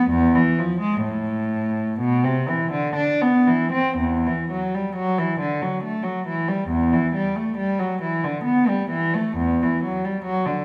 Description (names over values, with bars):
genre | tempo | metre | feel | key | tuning
classical, baroque-style suite movement for unaccompanied cello | 58-70 BPM | 3/4 | rubato | A minor, E minor from 4.0 s | A4 = 441 Hz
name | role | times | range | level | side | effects
warm cello | solo | 0.0-10.6 s | E2 to D4 | -22 LUFS | equal | none
room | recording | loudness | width
wet recital hall reverb, RT60 1.5 s | recorded in a church or concert hall | -22 LUFS | mono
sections
0.0-4.0 A section; 4.0-10.6 A section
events
none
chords
none